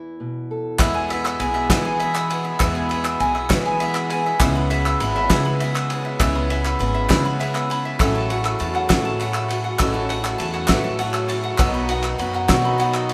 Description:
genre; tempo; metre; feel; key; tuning
indie folk with a building arrangement; 67 BPM (dotted quarters); 6/8; straight; E major; A4 = 440 Hz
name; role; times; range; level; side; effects
fingerpicked steel-string acoustic guitar; accompaniment; 0.0-2.6 s; E2 to A4; -34 LUFS; equal; none
picked swing-style acoustic guitar; accompaniment; 0.8-13.1 s; A2 to G#4; -30 LUFS; equal; none
warm upright piano; accompaniment; 0.8-13.1 s; A1 to F#5; -32 LUFS; equal; none
hand-pumped harmonium; sustained chords; 0.8-13.1 s; B2 to G#4; -30 LUFS; equal; none
mandolin; arpeggios; 0.8-13.1 s; E5 to E6; -27 LUFS; equal; none
upright bass; bass; 0.8-13.1 s; G#1 to E3; -28 LUFS; equal; none
cloth-damped thuddy drum kit; drums; 0.8-13.1 s; kick drum, ride cymbal, snare drum; -26 LUFS; equal; none
group handclap; percussion; 0.8-13.1 s; none; -30 LUFS; equal; none
room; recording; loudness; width
wet studio reverb, RT60 0.9 s; band playing live in one room; -21 LUFS; mono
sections
0.8-13.1 A section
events
none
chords
0.0 E; 4.4 C#m7; 8.0 A6; 11.6 B

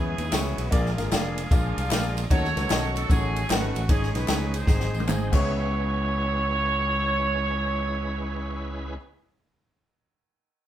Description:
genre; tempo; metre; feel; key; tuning
uptempo gospel; 152 BPM; 4/4; swing 65% on 8ths; C# minor; A4 = 440 Hz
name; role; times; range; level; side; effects
warm horn section; melody; 0.0-9.0 s; G#3 to C#5; -29 LUFS; right 2 dB; none
clear baby grand piano; accompaniment; 0.0-9.0 s; C#2 to E5; -32 LUFS; left 2 dB; none
bright tonewheel organ; sustained chords; 0.0-9.0 s; D#3 to B4; -36 LUFS; right 1 dB; slow rotary speaker, chorus vibrato
fingered electric bass; bass; 0.0-9.0 s; E#1 to E2; -28 LUFS; equal; none
swinging big-band drum kit; drums; 0.2-5.4 s; crash cymbal, kick drum, ride cymbal, snare drum, toms; -25 LUFS; equal; none
tambourine and handclaps; percussion; 0.2-5.7 s; none; -39 LUFS; left 2 dB; none
room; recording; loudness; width
moderate studio reverb, RT60 0.7 s; band playing live in one room; -22 LUFS; side -11 dB against mid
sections
0.0-5.5 A section; 5.5-8.6 B section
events
drum fill 4.7-5.5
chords
0.0 C#m7; 0.7 A#7; 2.3 D#m7b5; 3.9 G#sus4; 4.7 G#; 5.3 C#m7

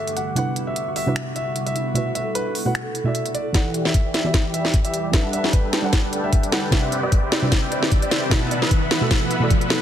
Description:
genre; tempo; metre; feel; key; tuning
future bass; 151 BPM; 4/4; swing 55% on 16ths, half-time; unclear; A4 = 439 Hz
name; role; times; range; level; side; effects
warm concert grand piano; melody; 0.0-9.8 s; A4 to F#5; -28 LUFS; equal; sidechain pumping, low-pass filter, dub echo
soft round pluck; accompaniment; 0.0-9.8 s; B2 to F#5; -26 LUFS; right 1 dB; chorus, sidechain pumping
ethereal airy pad; sustained chords; 0.0-9.8 s; E2 to F#5; -33 LUFS; equal; ensemble chorus, built-in reverb, sidechain pumping
concert harp; arpeggios; 0.0-5.8 s; E4 to D5; -32 LUFS; right 2 dB; sidechain pumping, dub echo
trap drum kit; drums; 0.1-9.8 s; finger snaps, hi-hat, snare drum; -24 LUFS; equal; small room ambience, soft clipping on snare
supersaw chords; riff; 3.5-9.8 s; E3 to B5; -25 LUFS; equal; cassette tape, sidechain pumping, low-pass filter
electronic kick drum; drums; 3.5-9.6 s; none; -19 LUFS; equal; small room ambience
riser; sound effects; 6.2-9.8 s; none; -31 LUFS; right 1 dB; none
room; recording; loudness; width
light reverb; dense, heavily limited modern master; -18 LUFS; side -10 dB against mid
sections
0.0-3.5 A section; 3.5-9.8 B section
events
build-up 3.5-9.8; drum fill 3.5-9.8; filter sweep on supersaw synth 3.5-9.8; filter sweep on grand piano 3.5-9.8; riser 6.2-9.8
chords
0.4 Cmaj9#11; 2.0 B7sus4; 3.5 Em7; 5.1 Gmaj9; 6.7 Cmaj9#11; 8.3 B7sus4

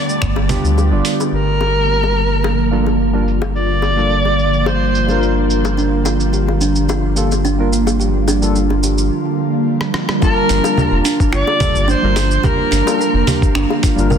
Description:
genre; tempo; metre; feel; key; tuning
sunset chillout; 108 BPM; 4/4; straight; unclear; A4 = 440 Hz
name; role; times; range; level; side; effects
warm soprano saxophone; melody; 0.0-5.5, 10.2-13.6 s; Bb4 to D5; -20 LUFS; equal; tape echo
ethereal airy pad; sustained chords; 0.0-14.2 s; D3 to G4; -20 LUFS; right 1 dB; ensemble chorus, built-in reverb, phaser
dusty soul sampler-style drum kit; drums; 0.1-14.2 s; congas, finger snaps, hi-hat, rim click, shaker; -22 LUFS; right 2 dB; low-pass filter on perc, low-pass filter on hats, soft clipping on snare, low-pass filter on snare, low-pass filter on room
round analog bass; bass; 0.2-14.2 s; F1 to D2; -18 LUFS; equal; none
electronic kick drum; drums; 0.2-0.3, 10.2-13.9 s; none; -17 LUFS; equal; none
bongos; percussion; 0.4-13.8 s; none; -26 LUFS; left 6 dB; none
soft electric-piano-like synth keys; accompaniment; 0.5-14.2 s; G3 to A5; -23 LUFS; moving between left 7 dB and right 2 dB; chorus, auto-pan, tape echo
kalimba; arpeggios; 5.8-14.2 s; D4 to Bb4; -21 LUFS; right 3 dB; tape echo
room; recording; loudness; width
moderate concert hall reverb, RT60 2.5 s; dense, heavily limited modern master; -13 LUFS; side -8 dB against mid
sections
0.0-1.3 A section; 1.3-10.2 B section; 10.2-14.2 C section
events
kick drops out 0.8-1.3; break 9.1-10.2; drum fill 9.8-10.2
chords
0.0 G9; 1.3 Gm7

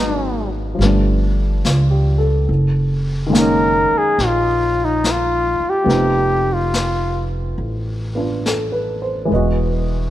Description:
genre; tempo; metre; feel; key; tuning
jazz ballad; 71 BPM; 4/4; swing 69% on 8ths; unclear; A4 = 438 Hz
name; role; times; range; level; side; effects
breathy flugelhorn; melody; 0.0-7.3 s; Eb4 to Bb4; -18 LUFS; left 1 dB; none
warm baby grand piano; accompaniment; 0.0-10.1 s; Eb3 to D#5; -21 LUFS; equal; none
upright bass; bass; 0.0-10.1 s; E1 to Db2; -19 LUFS; equal; none
vintage brush drum kit; drums; 0.8-10.1 s; brushed snare drum, hi-hat, snare drum; -26 LUFS; left 2 dB; none
room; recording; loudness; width
light reverb; none; -15 LUFS; side -13 dB against mid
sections
0.0-10.1 A section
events
none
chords
0.0 Abm9; 0.8 G9; 2.5 Gb69; 5.9 F7#11; 9.3 Emaj7

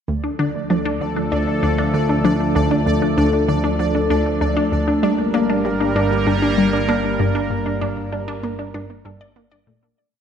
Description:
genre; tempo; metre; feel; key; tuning
ambient, sequencer-driven space music; 97 BPM; 4/4; straight; D minor; A4 = 441 Hz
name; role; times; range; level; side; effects
sweeping resonant pad; sustained chords; 0.1-9.9 s; F3 to Bb4; -20 LUFS; equal; chorus
analog pluck; riff; 0.1-9.9 s; D2 to Bb3; -22 LUFS; left 1 dB; chorus, tape echo
fat analog bass; bass; 0.1-9.9 s; G1 to D2; -27 LUFS; equal; none
pulsing gated texture; texture; 0.1-10.0 s; D5; -29 LUFS; right 4 dB; chorus, built-in reverb
wide unison pluck; arpeggios; 0.2-9.7 s; A3 to D5; -24 LUFS; moving between left 4 dB and right 2 dB; auto-pan, tape echo
room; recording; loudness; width
wet plate reverb, RT60 2.5 s; dreamy mix soaked in reverb; -16 LUFS; side -8 dB against mid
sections
0.1-10.0 A section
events
fade-out 6.7-10.0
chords
0.1 Dm; 5.0 Gm

